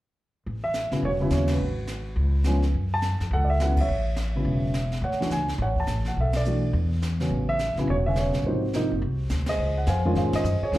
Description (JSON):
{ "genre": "jazz piano trio", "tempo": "210 BPM", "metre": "4/4", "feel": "swing 61% on 8ths", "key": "A major", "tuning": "A4 = 443 Hz", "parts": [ { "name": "upright bass", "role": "bass", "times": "0.5-10.8 s", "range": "E1 to Ab2", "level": "-25 LUFS", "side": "equal", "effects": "none" }, { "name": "jazz brush drum kit", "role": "drums", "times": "0.5-10.8 s", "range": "brushed snare drum, hi-hat, kick drum, ride cymbal, snare drum", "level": "-35 LUFS", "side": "equal", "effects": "none" }, { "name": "dark grand piano", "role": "melody", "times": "0.6-10.8 s", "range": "B#2 to A5", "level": "-26 LUFS", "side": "right 1 dB", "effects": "slapback echo" } ], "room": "light reverb", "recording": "live gig heard through the venue's PA, club reverb", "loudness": "-22 LUFS", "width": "side -16 dB against mid", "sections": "0.5-9.6 A section; 9.6-10.8 B section", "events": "band accent 1.5, 3.7, 6.3, 9.5, 10.3", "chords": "0.5 A6; 1.6 G#m7; 2.2 C#7; 2.7 F#m7; 3.9 A; 5.0 Dmaj7; 6.2 Bm7; 6.7 E5; 7.3 A6; 8.5 G#9; 9.6 Dbmaj9", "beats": "| 0.46 0.75 1.03 1.32 | 1.60 1.89 2.17 2.46 | 2.74 3.03 3.31 3.60 | 3.89 4.17 4.46 4.74 | 5.03 5.31 5.60 5.88 | 6.17 6.46 6.74 7.03 | 7.31 7.60 7.88 8.17 | 8.46 8.74 9.03 9.31 | 9.60 9.88 10.17 10.45 | 10.74" }